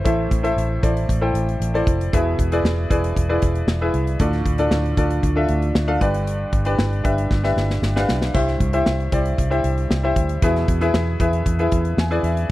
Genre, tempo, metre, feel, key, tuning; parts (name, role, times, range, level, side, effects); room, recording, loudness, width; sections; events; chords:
piano-driven pop; 116 BPM; 4/4; straight; A4 = 445 Hz
bright baby grand piano; accompaniment; 0.0-12.5 s; G2 to G#5; -21 LUFS; left 1 dB
vintage muted fingered electric bass; bass; 0.1-12.4 s; E1 to E2; -22 LUFS; equal
modern studio drum kit; drums; 0.1-12.5 s; hi-hat, kick drum, snare drum, splash cymbal; -22 LUFS; equal
studio reverb; dry, close 1970s-style studio recording; -17 LUFS; side -16 dB against mid
0.1-12.5 A section
drum fill 7.3-8.3; grand piano fill 11.7-12.5
0.1 Am; 2.1 E; 4.2 Dm; 6.0 G; 8.3 C; 10.4 E